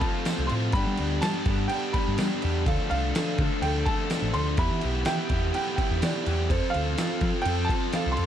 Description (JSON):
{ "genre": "indie rock", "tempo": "125 BPM", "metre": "4/4", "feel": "straight", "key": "unclear", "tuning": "A4 = 439 Hz", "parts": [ { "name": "clear upright piano", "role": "melody", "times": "0.0-8.3 s", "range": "F5 to C6", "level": "-32 LUFS", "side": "right 1 dB", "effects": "slapback echo" }, { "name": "delicate synth tine bell", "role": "second line", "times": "0.0-8.3 s", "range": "C5 to G5", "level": "-39 LUFS", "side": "right 2 dB", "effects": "chorus, phaser" }, { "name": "biting overdriven guitar", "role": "riff", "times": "0.0-8.3 s", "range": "D3 to A4", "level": "-28 LUFS", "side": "equal", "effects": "none" }, { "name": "dusty soul sampler-style drum kit", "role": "drums", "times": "0.0-8.3 s", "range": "crash cymbal, kick drum, snare drum", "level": "-29 LUFS", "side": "equal", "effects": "none" }, { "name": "tambourine", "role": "percussion", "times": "0.3-8.0 s", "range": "none", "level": "-43 LUFS", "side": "right 8 dB", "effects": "none" }, { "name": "picked electric bass", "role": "bass", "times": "0.4-8.3 s", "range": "A1 to G3", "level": "-28 LUFS", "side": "equal", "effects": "none" } ], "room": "light reverb", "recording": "dark, warm production", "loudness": "-24 LUFS", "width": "side -10 dB against mid", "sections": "0.0-8.3 A section", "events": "none", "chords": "0.0 F; 0.7 G; 2.7 Dm; 4.6 Em; 6.5 F" }